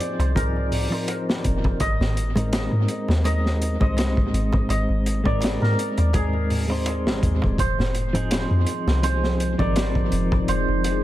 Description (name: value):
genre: trip hop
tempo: 83 BPM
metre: 4/4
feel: swing 55% on 16ths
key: F dorian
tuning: A4 = 440 Hz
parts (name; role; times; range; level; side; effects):
- santur; melody; 0.0-11.0 s; Ab4 to Eb5; -29 LUFS; right 1 dB; tape echo
- clean electric guitar; accompaniment; 0.0-11.0 s; F3 to C5; -27 LUFS; left 1 dB; tremolo, vintage 12-bit sampler grit, low-pass filter, tape echo
- crunchy breakbeat drum kit; drums; 0.0-11.0 s; hi-hat, kick drum, snare drum; -25 LUFS; equal; analog delay
- soft 808-style bass; bass; 0.2-11.0 s; Eb1 to Ab2; -23 LUFS; equal; none
- darbuka; percussion; 0.2-10.8 s; none; -32 LUFS; right 2 dB; none
- deep dark ambient pad; sustained chords; 8.7-11.0 s; F3 to Ab4; -29 LUFS; equal; chorus, built-in reverb
room: small room ambience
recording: echo-heavy mix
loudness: -20 LUFS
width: side -14 dB against mid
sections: 0.0-11.0 A section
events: filter sweep on clean electric guitar 0.0-11.0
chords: 0.0 Fm7; 1.8 Abadd9; 7.6 Fm7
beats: 0.36 1.08 | 1.80 2.53 3.25 3.97 | 4.70 5.42 6.14 6.87 | 7.59 8.31 9.03 9.76 | 10.48